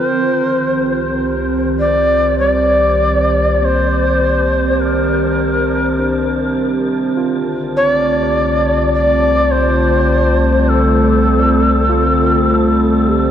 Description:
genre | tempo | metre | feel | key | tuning
ambient | 50 BPM | 3/4 | straight | C dorian | A4 = 440 Hz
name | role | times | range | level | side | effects
bright reedy long shakuhachi | melody | 0.0-13.3 s | A4 to D5 | -15 LUFS | left 1 dB | diffuse ambient delay
warbly tape-like pad | sustained chords | 0.0-13.3 s | D3 to C5 | -17 LUFS | right 1 dB | chorus, built-in reverb
tine electric piano | arpeggios | 0.0-13.3 s | F3 to D5 | -27 LUFS | equal | diffuse ambient delay
round analog bass | bass | 0.0-13.3 s | C2 | -19 LUFS | equal | none
overtone-sweeping drone | drone | 1.5-13.3 s | C3 to G3 | -30 LUFS | left 3 dB | none
wind-like tuned noise texture | texture | 1.0-13.3 s | A5 | -34 LUFS | right 4 dB | built-in reverb
room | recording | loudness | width
wet huge ambient reverb, RT60 7.8 s | worn, warbling old tape, cassette tape, warbly pitch drift | -12 LUFS | side -9 dB against mid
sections
0.0-13.3 A section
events
fade-in on tine electric piano 0.0-13.3; fade-in on synth texture 0.0-13.3; filter sweep on ambient pad 0.0-13.3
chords
0.0 Cm7; 7.2 Dm7/C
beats
1.20 2.40 | 3.61 4.80 5.99 | 7.16 8.34 9.51 | 10.70 11.88 13.08

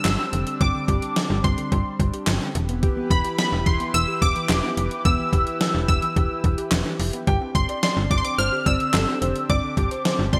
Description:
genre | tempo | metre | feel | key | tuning
synth-pop | 108 BPM | 4/4 | straight | unclear | A4 = 440 Hz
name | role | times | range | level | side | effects
funky polysynth comp | melody | 0.0-10.4 s | B5 to F6 | -28 LUFS | equal | chorus, delay
chorused pulse-width pad | sustained chords | 0.0-10.4 s | E3 to B4 | -34 LUFS | equal | none
gated 80s digital drum machine | drums | 0.0-10.4 s | handclaps, hi-hat, kick drum, snare drum | -26 LUFS | equal | gated reverb, gated reverb snare, overdrive
soft round pluck | arpeggios | 0.1-10.4 s | D3 to G4 | -34 LUFS | equal | chorus, delay
slap-like FM bass | bass | 0.1-10.4 s | E1 to G1 | -26 LUFS | equal | none
warm grand piano | second line | 7.3-10.4 s | A4 to G5 | -32 LUFS | equal | delay
room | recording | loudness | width
moderate lush hall reverb, RT60 1.8 s | bright 1980s-style digital production | -22 LUFS | mono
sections
0.0-10.4 A section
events
none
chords
0.0 Gsus4; 2.6 Em; 7.3 Gsus4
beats
0.05 | 0.61 1.16 1.72 2.27 | 2.83 3.38 3.94 4.50 | 5.05 5.61 6.16 6.72 | 7.27 7.83 8.38 8.94 | 9.50 10.05

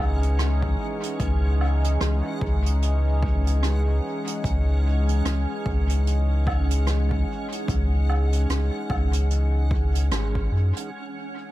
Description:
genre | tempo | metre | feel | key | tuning
ambient dub | 74 BPM | 4/4 | swing 59% on 16ths | C# minor | A4 = 440 Hz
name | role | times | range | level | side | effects
warm analog pad | sustained chords | 0.0-11.5 s | E3 to G#4 | -30 LUFS | equal | chorus
warm sub bass | bass | 0.0-10.7 s | G#1 to F#2 | -21 LUFS | equal | none
backwards swelling texture | texture | 0.0-11.5 s | C#4 to F#5 | -36 LUFS | right 1 dB | built-in reverb
jazz brush drum kit | drums | 0.2-10.9 s | hi-hat, rim click, woodblock | -33 LUFS | right 2 dB | dub echo
electronic kick drum | drums | 0.6-10.5 s | none | -28 LUFS | equal | overdrive
room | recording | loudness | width
little or no reverb | none | -21 LUFS | side -16 dB against mid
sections
0.0-10.9 A section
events
band accent 10.1-10.5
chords
0.0 C#madd9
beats
0.39 | 1.20 2.01 2.82 3.63 | 4.44 5.25 6.06 6.87 | 7.68 8.49 9.31 10.12 | 10.93

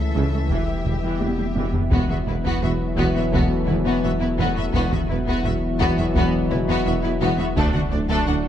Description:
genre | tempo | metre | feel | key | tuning
cinematic, hybrid orchestral and electronic film score | 85 BPM | 4/4 | straight | E minor | A4 = 441 Hz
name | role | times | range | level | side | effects
rich chamber violin section | melody | 0.0-8.3 s | F#4 to F#5 | -30 LUFS | left 3 dB | none
rich symphonic violin section | second line | 0.0-8.3 s | A3 to A4 | -30 LUFS | left 4 dB | none
dark analog pad | sustained chords | 0.0-8.5 s | E3 to E5 | -29 LUFS | left 1 dB | chorus
dark trombone section | sustained chords | 0.0-8.5 s | A2 to F#3 | -32 LUFS | right 2 dB | none
mellow French horn section | sustained chords | 0.0-8.5 s | F#3 to E4 | -29 LUFS | left 5 dB | none
punchy sub bass | bass | 0.0-8.5 s | D1 to C#2 | -28 LUFS | equal | none
rich studio cello section | bass | 0.1-8.3 s | C#2 to E2 | -30 LUFS | right 2 dB | none
rich symphonic double bass section | bass | 0.1-8.3 s | E1 to D2 | -28 LUFS | right 2 dB | none
taiko ensemble | drums | 0.1-8.5 s | none | -26 LUFS | equal | none
rich studio viola section | accompaniment | 0.2-8.4 s | C#3 to D4 | -30 LUFS | right 3 dB | none
warm tuba | bass | 0.2-8.3 s | E1 to D2 | -30 LUFS | right 3 dB | none
warm concert grand piano | texture | 2.6-8.5 s | A3 to D5 | -37 LUFS | left 2 dB | none
room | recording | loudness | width
moderate concert hall reverb, RT60 2.4 s | dark, warm production | -19 LUFS | side -10 dB against mid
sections
0.0-1.9 A section; 1.9-8.5 A section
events
drum fill 1.2-1.9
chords
0.0 A/C#; 0.5 Em; 1.9 Esus2; 7.6 D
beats
0.51 1.21 | 1.92 2.62 3.33 4.04 | 4.74 5.45 6.15 6.86 | 7.57 8.27

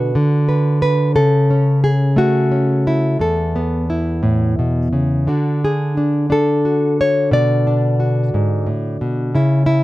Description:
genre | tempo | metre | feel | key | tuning
folk, solo fingerstyle acoustic guitar | 59 BPM (dotted quarters) | 6/8 | rubato | unclear | A4 = 439 Hz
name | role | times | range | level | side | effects
nylon-string guitar | solo | 0.0-9.8 s | E2 to D5 | -14 LUFS | equal | none
room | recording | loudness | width
little or no reverb | close, detailed microphones | -14 LUFS | side -17 dB against mid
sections
0.0-9.8 A section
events
none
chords
0.0 Bm; 1.2 A/C#; 3.2 Esus4; 5.3 D; 7.3 Bm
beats
0.15 | 1.15 2.17 | 3.20 4.24 | 5.28 6.30 | 7.32 8.34 | 9.35

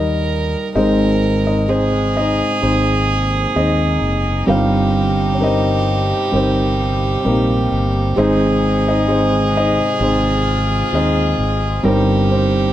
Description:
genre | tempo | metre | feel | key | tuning
acoustic folk-pop ballad | 65 BPM | 4/4 | straight | Ab major | A4 = 439 Hz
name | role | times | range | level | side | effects
felt-muted upright piano | melody | 0.0-12.7 s | G1 to F5 | -16 LUFS | equal | plate reverb
warm violin | second line | 0.0-12.7 s | G4 to Bb4 | -21 LUFS | right 2 dB | none
fingered electric bass | bass | 0.0-12.7 s | Gb1 to Eb2 | -20 LUFS | equal | none
warm chamber string section | sustained chords | 0.8-12.7 s | C3 to F4 | -29 LUFS | left 2 dB | none
room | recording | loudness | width
light reverb | none | -14 LUFS | side -12 dB against mid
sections
0.8-12.7 A section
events
none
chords
0.0 Eb; 0.8 Ab; 4.5 Eb6/G; 8.2 Ab; 11.8 Eb6/G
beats
| 0.76 1.70 2.63 3.56 | 4.49 5.41 6.34 7.26 | 8.18 9.09 10.01 10.93 | 11.84

